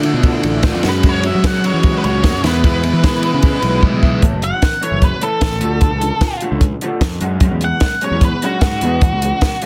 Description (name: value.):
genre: indie rock.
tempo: 150 BPM.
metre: 4/4.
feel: straight.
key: A major.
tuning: A4 = 443 Hz.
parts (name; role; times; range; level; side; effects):
electric guitar through a small old amp; riff; 0.0-9.7 s; A2 to F#4; -24 LUFS; equal; analog chorus.
overdriven electric guitar; riff; 0.0-4.2 s; D3 to F#4; -24 LUFS; equal; subtle chorus, slapback echo.
fuzz picked electric bass; bass; 0.0-9.3 s; F#1 to F#3; -21 LUFS; equal; overdrive.
compact cocktail drum kit; drums; 0.0-9.7 s; hi-hat, kick drum, ride cymbal, snare drum; -18 LUFS; equal; soft clipping on snare.
octave-fuzz lead guitar; melody; 0.9-9.6 s; F#4 to F#5; -23 LUFS; equal; distortion, slapback echo, plate reverb.
room: light reverb.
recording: dense, heavily limited modern master.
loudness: -15 LUFS.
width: mono.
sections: 0.0-4.2 A section; 4.2-9.7 B section.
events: drum fill 3.8-4.2; lead electric guitar solo 4.2-9.7.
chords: 0.0 Dmadd9; 0.8 F#sus2; 2.4 E; 4.2 A5; 5.6 Dm; 7.2 F#sus2; 8.8 E.